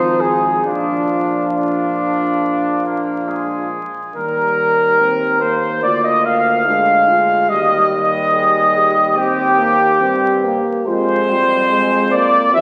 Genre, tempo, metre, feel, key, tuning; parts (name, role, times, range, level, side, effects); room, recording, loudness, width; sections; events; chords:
classical, brass quintet; 70 BPM; 4/4; uneven beats, rubato; Eb major; A4 = 439 Hz
mellow cornet; melody; 0.0-12.6 s; F4 to F5; -19 LUFS; equal
bright trumpet; second line; 0.0-12.6 s; Ab3 to F5; -21 LUFS; equal
warm French horn; accompaniment; 0.0-12.6 s; D4 to Ab4; -25 LUFS; equal
warm trombone; accompaniment; 0.0-12.6 s; F3 to C4; -26 LUFS; equal
mellow bass trombone; bass; 0.0-12.6 s; Ab1 to G2; -28 LUFS; equal
wet scoring stage reverb, RT60 1.8 s; very old 78 rpm record, vinyl crackle; -16 LUFS; mono
0.0-4.2 A section; 4.2-12.6 B section
0.0 Fm7/Ab; 0.7 Bb; 4.2 Eb; 5.8 Bb/D; 7.5 Eb; 10.9 Fm